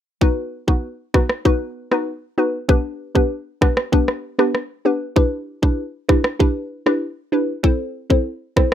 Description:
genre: dancehall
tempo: 97 BPM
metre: 4/4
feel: straight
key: unclear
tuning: A4 = 440 Hz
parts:
  - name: hollow square pluck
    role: accompaniment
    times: 0.2-8.7 s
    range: B3 to C5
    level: -20 LUFS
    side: left 1 dB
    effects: chorus
  - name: island pop drum kit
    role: drums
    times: 0.2-8.7 s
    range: kick drum, rim click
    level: -17 LUFS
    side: equal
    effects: none
room: little or no reverb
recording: rough home demo mix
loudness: -18 LUFS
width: side -10 dB against mid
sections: 0.2-8.7 A section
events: hi-hats muted 0.2-8.7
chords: 0.2 B; 2.7 G; 5.2 Em7; 7.6 Am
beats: | 0.21 0.83 1.45 2.07 | 2.69 3.31 3.93 4.54 | 5.16 5.78 6.40 7.02 | 7.64 8.26

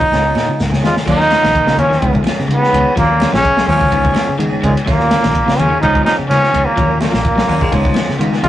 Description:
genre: afrobeat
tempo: 126 BPM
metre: 4/4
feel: swing 53% on 16ths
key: Eb minor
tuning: A4 = 440 Hz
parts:
  - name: brilliant trombone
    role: melody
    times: 0.0-8.5 s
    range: Ab3 to F4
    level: -14 LUFS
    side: equal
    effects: none
  - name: tine electric piano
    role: accompaniment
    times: 0.0-8.5 s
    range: Gb3 to Ab5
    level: -25 LUFS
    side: left 1 dB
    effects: overdrive, medium stereo tremolo
  - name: electric guitar at the edge of break-up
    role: arpeggios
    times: 0.0-8.5 s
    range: Db3 to Gb3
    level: -22 LUFS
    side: left 1 dB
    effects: none
  - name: semi-hollow electric guitar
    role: stabs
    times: 0.0-8.5 s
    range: F3 to Ab4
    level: -23 LUFS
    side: right 2 dB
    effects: none
  - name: crunchy breakbeat drum kit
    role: drums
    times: 0.0-8.5 s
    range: crash cymbal, hi-hat, kick drum, ride cymbal, snare drum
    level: -19 LUFS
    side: equal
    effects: none
  - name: fingered electric bass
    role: bass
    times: 0.1-8.5 s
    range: Bb1 to Db3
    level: -19 LUFS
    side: left 1 dB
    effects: none
  - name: shekere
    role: percussion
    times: 0.1-1.0 s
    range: none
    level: -29 LUFS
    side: left 1 dB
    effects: none
  - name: congas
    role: percussion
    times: 0.4-8.5 s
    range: none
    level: -25 LUFS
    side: equal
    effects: none
  - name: breathy tenor saxophone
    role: second line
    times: 0.8-8.5 s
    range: Bb2 to Ab3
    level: -25 LUFS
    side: right 2 dB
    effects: none
  - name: raspy baritone saxophone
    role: second line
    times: 7.5-8.3 s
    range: F3 to Ab3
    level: -24 LUFS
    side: left 2 dB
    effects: none
room: moderate stone room reverb, RT60 1.2 s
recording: rough rehearsal-room recording, tube saturation, nothing above 10.4 kHz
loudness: -11 LUFS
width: side -13 dB against mid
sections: 0.0-1.1 A section; 1.1-8.5 B section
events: drum fill 0.1-1.1; tine electric piano fill 0.4-1.1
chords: 0.1 Db7; 1.1 Ebm9; 2.0 Db7; 3.0 Ebm9; 3.9 Db7; 4.9 Ebm9; 5.8 Db7; 6.8 Ebm9; 7.7 Db7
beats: 0.12 0.60 | 1.07 1.55 2.02 2.50 | 2.97 3.44 3.92 4.39 | 4.87 5.34 5.82 6.29 | 6.77 7.24 7.72 8.19

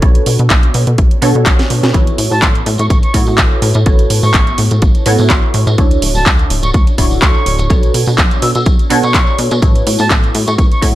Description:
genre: filtered disco house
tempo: 125 BPM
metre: 4/4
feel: swing 54% on 16ths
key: A major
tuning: A4 = 438 Hz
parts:
  - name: funky polysynth comp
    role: accompaniment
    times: 0.0-10.9 s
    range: B3 to C#5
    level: -18 LUFS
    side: right 1 dB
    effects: chorus, phaser, sidechain pumping, low-pass filter
  - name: plucky analog bass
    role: bass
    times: 0.0-10.9 s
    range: D1 to B2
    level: -14 LUFS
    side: equal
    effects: tube saturation, sidechain pumping, low-pass filter
  - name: electronic kick drum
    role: drums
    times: 0.0-10.9 s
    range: none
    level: -12 LUFS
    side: equal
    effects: overdrive
  - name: house drum kit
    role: drums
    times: 0.0-10.9 s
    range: handclaps, hi-hat, snare drum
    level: -17 LUFS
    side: right 1 dB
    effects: overdrive, sidechain pumping on hats
  - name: tambourine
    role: percussion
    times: 1.9-10.8 s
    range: none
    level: -28 LUFS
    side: right 2 dB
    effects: sidechain pumping on perc, low-pass filter on perc
  - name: bright reedy silver concert flute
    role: melody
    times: 2.3-10.9 s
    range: A5 to E6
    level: -20 LUFS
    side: equal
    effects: sidechain pumping, low-pass filter, tape echo
room: little or no reverb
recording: none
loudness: -9 LUFS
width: side -15 dB against mid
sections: 0.0-10.9 A section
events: filter sweep 0.0-10.9; drum fill 1.6-1.9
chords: 0.0 Bm9; 1.9 A69; 5.8 Dmaj9; 7.7 Bm9; 9.6 A69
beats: | 0.02 0.50 0.98 1.46 | 1.94 2.42 2.90 3.38 | 3.86 4.34 4.82 5.30 | 5.78 6.26 6.74 7.22 | 7.70 8.18 8.66 9.14 | 9.62 10.10 10.58

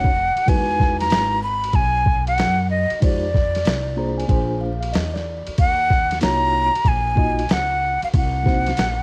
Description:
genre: hip hop, jazz-hop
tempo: 94 BPM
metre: 4/4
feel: swing 64% on 16ths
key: unclear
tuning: A4 = 440 Hz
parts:
  - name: breathy jazz flute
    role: melody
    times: 0.0-9.0 s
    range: D5 to B5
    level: -22 LUFS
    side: equal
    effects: cassette tape
  - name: mellow tine electric piano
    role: accompaniment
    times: 0.0-8.7 s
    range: Gb3 to Bb5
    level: -28 LUFS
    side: equal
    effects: cassette tape
  - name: upright bass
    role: bass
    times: 0.0-9.0 s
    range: F1 to Gb2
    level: -28 LUFS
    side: equal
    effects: none
  - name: boom bap sampler-style drum kit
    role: drums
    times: 0.0-9.0 s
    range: hi-hat, kick drum, ride cymbal, snare drum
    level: -23 LUFS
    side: equal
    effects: none
room: light reverb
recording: home recording on cassette, vinyl crackle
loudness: -20 LUFS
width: mono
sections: 0.0-9.0 A section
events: tine electric piano fill 3.7-5.6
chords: 0.5 Emaj7; 3.0 Fm7; 4.3 Bb7; 5.6 Ebm7; 8.1 Cm7b5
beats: | 0.47 1.11 1.75 2.39 | 3.03 3.67 4.30 4.94 | 5.58 6.22 6.86 7.50 | 8.13 8.77

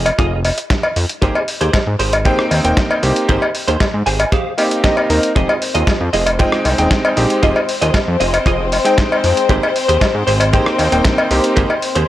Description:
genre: nu-disco, nu disco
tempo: 116 BPM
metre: 4/4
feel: straight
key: unclear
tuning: A4 = 440 Hz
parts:
  - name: direct-recorded clean electric guitar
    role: riff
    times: 0.0-12.1 s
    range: F4 to Ab5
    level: -21 LUFS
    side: right 2 dB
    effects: ensemble chorus, tape echo
  - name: fat analog bass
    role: bass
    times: 0.0-12.0 s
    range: Eb1 to Ab2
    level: -18 LUFS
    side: equal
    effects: transformer saturation
  - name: dusty soul sampler-style drum kit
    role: drums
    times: 0.1-12.1 s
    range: hi-hat, rim click, snare drum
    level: -22 LUFS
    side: equal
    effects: none
  - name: cowbell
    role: percussion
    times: 0.1-11.8 s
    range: none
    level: -20 LUFS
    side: left 1 dB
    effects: none
  - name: kick drum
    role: drums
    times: 0.2-11.7 s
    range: none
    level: -17 LUFS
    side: equal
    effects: none
  - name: bright electric grand piano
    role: accompaniment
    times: 1.2-11.7 s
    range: Ab3 to G5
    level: -18 LUFS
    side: right 1 dB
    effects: tape echo
  - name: warm symphonic string section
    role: sustained chords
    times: 5.4-12.1 s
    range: C4 to C5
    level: -20 LUFS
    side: left 4 dB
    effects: sidechain pumping
room: light reverb, small room ambience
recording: dry, gritty hardware recording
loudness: -13 LUFS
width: side -14 dB against mid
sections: 0.0-12.1 A section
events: clean electric guitar fill 3.8-5.4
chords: 0.0 Fm7; 1.2 Abmaj7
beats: 0.19 0.70 | 1.22 1.74 2.26 2.77 | 3.29 3.81 4.33 4.84 | 5.36 5.88 6.39 6.91 | 7.43 7.95 8.46 8.98 | 9.50 10.01 10.53 11.05 | 11.57

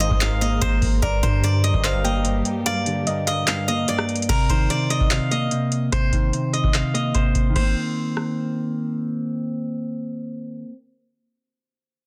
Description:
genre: hip hop, trap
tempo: 147 BPM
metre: 4/4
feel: half-time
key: C minor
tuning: A4 = 440 Hz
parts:
  - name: steel-string zither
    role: melody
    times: 0.0-9.5 s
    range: Bb4 to F5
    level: -28 LUFS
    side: equal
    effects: low-pass filter, digital delay
  - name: soft round pluck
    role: second line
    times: 0.0-3.5 s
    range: C5 to G5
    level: -32 LUFS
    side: equal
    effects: chorus, digital delay
  - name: mellow electric guitar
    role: accompaniment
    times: 0.0-10.7 s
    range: G2 to C4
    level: -27 LUFS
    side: equal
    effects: low-pass filter
  - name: dark symphonic string section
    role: sustained chords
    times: 0.0-4.3 s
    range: G3 to C5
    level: -35 LUFS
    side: equal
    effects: none
  - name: warm 808-style bass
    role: bass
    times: 0.0-2.4 s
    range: G1 to G2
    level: -24 LUFS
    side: equal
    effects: none
  - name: booming analog drum machine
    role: drums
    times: 0.0-8.3 s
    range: crash cymbal, handclaps, hi-hat, kick drum, rim click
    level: -25 LUFS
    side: equal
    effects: none
room: little or no reverb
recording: dense, heavily limited modern master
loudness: -22 LUFS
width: mono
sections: 0.0-4.3 A section; 4.3-7.6 B section; 7.6-10.8 C section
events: kick muted 2.7-4.3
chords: 0.0 Abadd9; 1.0 Gm; 4.3 Cm7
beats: 0.21 0.62 | 1.03 1.43 1.84 2.25 | 2.66 3.07 3.48 3.88 | 4.29 4.70 5.11 5.52 | 5.92 6.33 6.74 7.15 | 7.56 7.96 8.37 8.78 | 9.19 9.60 10.01 10.41

